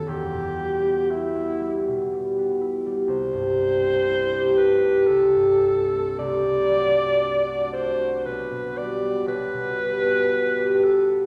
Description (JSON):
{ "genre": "classical, romantic duo for alto saxophone and harp", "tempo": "59 BPM", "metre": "3/4", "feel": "uneven beats, rubato", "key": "G major from 3.1 s", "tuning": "A4 = 439 Hz", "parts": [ { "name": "mellow alto saxophone", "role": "melody", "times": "0.0-11.2 s", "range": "E4 to D5", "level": "-27 LUFS", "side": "equal", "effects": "none" }, { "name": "concert harp", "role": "accompaniment", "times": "0.0-11.3 s", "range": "E1 to B4", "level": "-24 LUFS", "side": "equal", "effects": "none" } ], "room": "wet concert hall reverb, RT60 2.0 s", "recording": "none", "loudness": "-22 LUFS", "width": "mono", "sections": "0.0-11.3 A section", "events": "none", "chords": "0.1 Em; 3.1 Am7/C; 6.2 D7/C; 8.3 G/B; 9.3 G7/B", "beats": "| 0.09 1.10 2.12 | 3.10 4.09 5.09 | 6.20 7.22 8.26 | 9.29 10.32" }